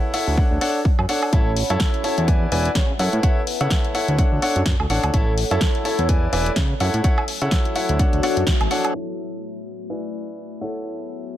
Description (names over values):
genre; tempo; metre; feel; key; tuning
piano house; 126 BPM; 4/4; swing 57% on 16ths; A major; A4 = 441 Hz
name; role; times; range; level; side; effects
clear concert grand piano; riff; 0.0-11.4 s; D4 to A5; -24 LUFS; equal; sidechain pumping, tape echo
deep dark ambient pad; texture; 0.0-11.4 s; F#4 to B5; -29 LUFS; left 1 dB; chorus, built-in reverb, sidechain pumping
house drum kit; drums; 0.1-11.4 s; hi-hat, shaker, snare drum, woodblock; -26 LUFS; left 1 dB; low-pass filter on hats, low-pass filter on perc, low-pass filter on snare
fat analog bass; bass; 0.3-8.7 s; E1 to C#3; -22 LUFS; equal; sidechain pumping
electronic kick drum; drums; 0.4-8.6 s; none; -19 LUFS; equal; none
room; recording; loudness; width
light reverb; low-pass filter; -18 LUFS; side -12 dB against mid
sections
0.0-8.9 A section; 8.9-11.4 B section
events
band accent 8.5; filter sweep 8.9-11.4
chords
0.0 Dmaj7; 1.3 A; 2.3 E7; 3.0 F#m7; 4.2 Dmaj7; 5.1 A; 6.1 E7; 6.8 F#m7; 8.0 Dmaj7; 8.9 A; 9.9 E7; 10.6 F#m7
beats
0.38 0.85 | 1.33 1.80 2.28 2.76 | 3.23 3.71 4.18 4.66 | 5.14 5.61 6.09 6.57 | 7.04 7.52 7.99 8.47 | 8.95 9.42 9.90 10.38 | 10.85 11.33